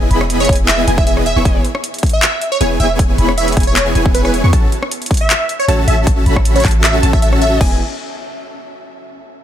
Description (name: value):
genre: future bass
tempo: 156 BPM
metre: 4/4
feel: swing 53% on 16ths, half-time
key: E major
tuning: A4 = 440 Hz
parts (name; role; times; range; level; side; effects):
- wide unison pluck; arpeggios; 0.0-7.8 s; G#5 to C#6; -27 LUFS; equal; sidechain pumping, ping-pong delay
- dense compressed supersaw; riff; 0.0-7.8 s; B3 to C#6; -19 LUFS; equal; sidechain pumping
- warm 808-style bass; bass; 0.0-7.8 s; E1 to E2; -16 LUFS; equal; sidechain pumping
- big-room dance drum kit; drums; 0.1-7.7 s; crash cymbal, handclaps, hi-hat, rim click; -19 LUFS; left 1 dB; overdrive
- plucky unison lead; melody; 0.4-7.6 s; B4 to E5; -20 LUFS; right 1 dB; sidechain pumping, ping-pong delay
- electronic kick drum; drums; 0.5-7.7 s; none; -14 LUFS; equal; overdrive
room: digital ambience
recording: none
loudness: -11 LUFS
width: side -10 dB against mid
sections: 0.0-7.6 A section; 7.6-9.1 B section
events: drop 0.0-7.6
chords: 0.0 Emaj7; 1.3 C#m7/E; 4.5 A6; 7.6 Emaj7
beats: 0.30 0.68 1.07 | 1.45 1.84 2.22 2.61 | 2.99 3.38 3.76 4.15 | 4.53 4.92 5.30 5.68 | 6.07 6.45 6.84 7.22 | 7.61